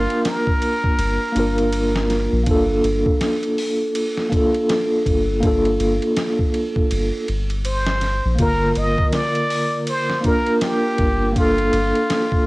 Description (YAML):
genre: trip hop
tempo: 81 BPM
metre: 4/4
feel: swing 60% on 16ths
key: G minor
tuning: A4 = 439 Hz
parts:
  - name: trumpet with plunger mute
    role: melody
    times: 0.0-2.1, 7.7-12.5 s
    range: F4 to Eb5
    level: -23 LUFS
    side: equal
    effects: cassette tape, tape echo
  - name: mellow tine electric piano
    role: accompaniment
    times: 0.0-12.5 s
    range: D3 to Bb4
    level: -19 LUFS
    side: equal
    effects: tremolo, cassette tape, tape echo
  - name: soft dub sub bass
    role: bass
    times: 0.0-11.9 s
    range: G1 to Bb1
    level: -22 LUFS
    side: equal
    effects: none
  - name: boom bap sampler-style drum kit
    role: drums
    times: 0.1-12.5 s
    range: hi-hat, kick drum, ride cymbal, snare drum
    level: -24 LUFS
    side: equal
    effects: cassette tape
room: digital ambience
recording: home recording on cassette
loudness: -17 LUFS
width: side -21 dB against mid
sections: 0.0-12.5 A section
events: none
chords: 0.0 Gm7